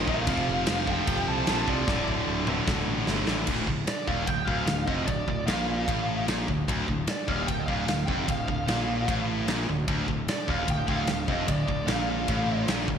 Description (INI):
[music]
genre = heavy metal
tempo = 150 BPM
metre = 4/4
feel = straight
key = D phrygian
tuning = A4 = 440 Hz
[part]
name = bluesy overdriven lead guitar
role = melody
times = 0.0-12.6 s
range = D5 to A5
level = -32 LUFS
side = right 2 dB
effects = distortion
[part]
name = rich studio string section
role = sustained chords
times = 0.0-3.5, 9.9-13.0 s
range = C3 to Bb4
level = -41 LUFS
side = left 1 dB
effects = none
[part]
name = heavy high-gain guitar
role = riff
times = 0.0-13.0 s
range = D2 to F3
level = -31 LUFS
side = right 8 dB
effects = distortion
[part]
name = high-gain distorted guitar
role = riff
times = 0.0-13.0 s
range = D2 to F3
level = -32 LUFS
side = left 9 dB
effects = distortion
[part]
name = fuzz picked electric bass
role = bass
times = 0.0-13.0 s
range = D1 to C2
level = -32 LUFS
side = equal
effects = overdrive
[part]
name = big rock drum kit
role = drums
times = 0.1-13.0 s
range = crash cymbal, kick drum, ride cymbal, snare drum, toms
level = -30 LUFS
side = equal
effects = gated reverb
[sound]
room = moderate lush hall reverb, RT60 1.7 s, studio reverb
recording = bright 1980s-style digital production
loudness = -24 LUFS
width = side -8 dB against mid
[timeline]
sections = 0.0-3.5 A section; 3.5-13.0 B section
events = drum fill 1.9-3.5, 9.7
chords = 0.3 F; 1.9 Dm